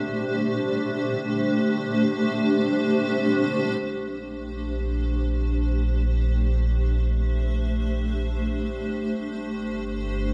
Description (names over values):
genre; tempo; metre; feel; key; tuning
ambient; free time; none; none; unclear; A4 = 439 Hz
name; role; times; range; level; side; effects
granular cloud pad; sustained chords; 0.0-10.3 s; Bb2 to E5; -27 LUFS; equal; built-in reverb
round analog bass; bass; 3.8-10.3 s; G1 to Bb1; -26 LUFS; equal; none
room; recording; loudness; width
wet lush hall reverb, RT60 2.6 s; none; -25 LUFS; mono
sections
0.0-3.8 A section; 3.8-10.3 B section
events
fade-in on ambient pad 3.8-10.3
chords
0.0 C13/Bb; 9.2 G5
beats
free time